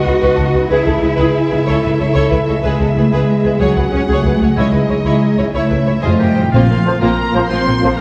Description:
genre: cinematic, heroic adventure film score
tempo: 124 BPM (dotted quarters)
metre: 12/8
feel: straight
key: unclear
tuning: A4 = 442 Hz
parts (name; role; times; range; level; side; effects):
- rich studio violin section; melody; 0.0-8.0 s; D#5 to C6; -27 LUFS; equal; none
- mellow French horn section; sustained chords; 0.0-7.9 s; Bb3 to D#5; -24 LUFS; equal; none
- concert harp; arpeggios; 0.0-8.0 s; Bb2 to C#5; -24 LUFS; equal; none
- warm studio cello section; bass; 0.0-8.0 s; F3 to F#4; -20 LUFS; equal; none
- warm symphonic violin section; second line; 0.1-8.0 s; Bb3 to C#5; -24 LUFS; equal; none
- clear symphonic viola section; accompaniment; 0.1-8.0 s; F3 to A4; -24 LUFS; equal; none
- rich symphonic double bass section; bass; 0.1-7.9 s; Bb1 to F2; -21 LUFS; equal; none
- timpani; percussion; 3.6-7.0 s; Bb2 to C#3; -23 LUFS; equal; none
- clear oboe; second line; 6.0-8.0 s; F4 to C5; -27 LUFS; equal; none
- bright small flute group; second line; 6.5-8.0 s; C6; -32 LUFS; equal; none
- dark clarinet; second line; 6.5-8.0 s; F4; -29 LUFS; equal; none
- clear trombone section; sustained chords; 6.8-7.9 s; F2 to F3; -26 LUFS; equal; none
- dark trumpet section; stabs; 6.9-7.9 s; C5; -24 LUFS; equal; none
room: moderate concert hall reverb, RT60 2.0 s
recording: dark, warm production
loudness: -14 LUFS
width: mono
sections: 0.0-6.5 A section; 6.5-8.0 B section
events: none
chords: 0.0 Badd9/C#; 0.7 E/C#; 3.6 F#madd9/C#; 4.6 C#madd9; 5.5 A/C#; 6.0 F7; 6.5 Bbsus2

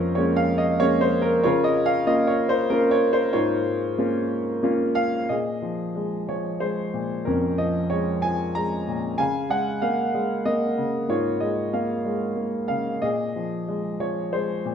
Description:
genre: classical, lyrical solo piano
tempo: 93 BPM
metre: 3/4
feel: rubato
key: unclear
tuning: A4 = 439 Hz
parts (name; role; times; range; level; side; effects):
- clear concert grand piano; solo; 0.0-14.7 s; F2 to Bb5; -21 LUFS; equal; none
room: moderate recital hall reverb, RT60 1.7 s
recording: minimal, uncompressed stereo recording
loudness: -21 LUFS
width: side -8 dB against mid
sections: 0.0-5.3 A section; 5.3-14.7 B section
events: none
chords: 0.0 Bbm7; 1.4 Db6; 5.3 Bbm7; 9.2 Db6; 13.0 Bbm7

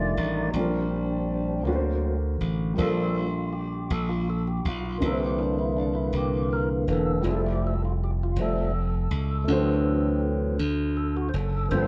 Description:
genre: slow gospel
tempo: 54 BPM (dotted quarters)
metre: 6/8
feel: straight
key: unclear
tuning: A4 = 438 Hz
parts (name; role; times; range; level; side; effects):
- warm grand piano; accompaniment; 0.0-11.9 s; G2 to C5; -33 LUFS; equal; none
- tonewheel organ; sustained chords; 0.0-11.9 s; D3 to D5; -31 LUFS; equal; fast rotary speaker, overdrive
- glassy slap bass; bass; 0.0-11.9 s; E1 to D2; -29 LUFS; equal; none
room: light reverb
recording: band playing live in one room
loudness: -26 LUFS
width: mono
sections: 0.0-11.9 A section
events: tonewheel organ solo 0.0-11.9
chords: 0.0 F13; 0.6 Bb6; 1.7 D7b13; 2.8 Gm9/Bb; 5.0 C9; 7.3 Fmaj9; 9.5 D7

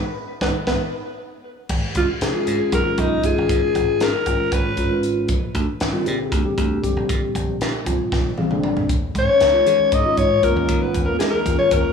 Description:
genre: electric jazz fusion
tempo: 234 BPM (eighths)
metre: 7/8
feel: straight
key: unclear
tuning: A4 = 441 Hz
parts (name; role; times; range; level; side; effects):
- growling alto saxophone; melody; 0.4-5.1, 9.2-11.9 s; D#4 to D#5; -20 LUFS; left 4 dB; slapback echo, tape echo
- mellow trombone; second line; 0.4-0.7, 9.2-11.9 s; G#3 to D#4; -28 LUFS; equal; slapback echo
- mellow tine electric piano; accompaniment; 0.4-11.9 s; D3 to E#5; -24 LUFS; right 1 dB; medium stereo tremolo, slapback echo
- dry thumbed slap bass; bass; 0.4-11.9 s; E#1 to D#3; -25 LUFS; equal; none
- crisp fusion drum kit; drums; 0.4-11.8 s; crash cymbal, hi-hat, kick drum, snare drum, toms; -24 LUFS; equal; none
room: moderate plate reverb, RT60 2.2 s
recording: live gig heard through the venue's PA, club reverb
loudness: -17 LUFS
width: side -6 dB against mid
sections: 0.0-1.7 A section; 1.7-11.9 A section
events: band accent 0.0-1.7; drum fill 1.3-1.7, 8.1-8.9; tine electric piano fill 8.1-8.9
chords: 0.0 G#m; 1.7 G#sus2; 5.3 A#9; 8.9 D#9sus4

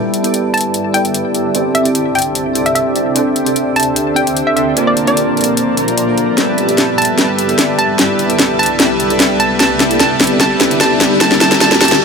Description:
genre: future bass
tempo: 149 BPM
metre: 4/4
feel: half-time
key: G major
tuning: A4 = 441 Hz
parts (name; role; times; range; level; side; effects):
- glassy digital keys; accompaniment; 0.0-12.0 s; Bb3 to A5; -18 LUFS; right 1 dB; chorus, ping-pong delay
- shimmering ambient pad; sustained chords; 0.6-12.0 s; C2 to E5; -22 LUFS; equal; chorus, built-in reverb
- soft supersaw; riff; 0.0-12.0 s; G3 to Bb5; -17 LUFS; equal; low-pass filter
- trap drum kit; drums; 0.1-12.0 s; hi-hat, snare drum; -15 LUFS; left 1 dB; none
- hollow square pluck; melody; 0.5-11.9 s; D5 to A5; -18 LUFS; equal; chorus, ping-pong delay
- riser and reverse cymbal; sound effects; 9.0-12.0 s; none; -21 LUFS; left 2 dB; none
room: light reverb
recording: none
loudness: -11 LUFS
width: side -5 dB against mid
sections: 0.0-12.0 A section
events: build-up 0.0-12.0; filter sweep on supersaw synth 0.0-12.0; filter sweep on ambient pad 0.0-12.0; drum fill 6.4-12.0; riser 9.0-12.0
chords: 0.0 G69; 1.5 C69; 3.2 D7sus4; 4.8 Bbmaj7; 6.4 G69; 8.0 C69; 9.6 D7sus4; 11.2 Bbmaj7

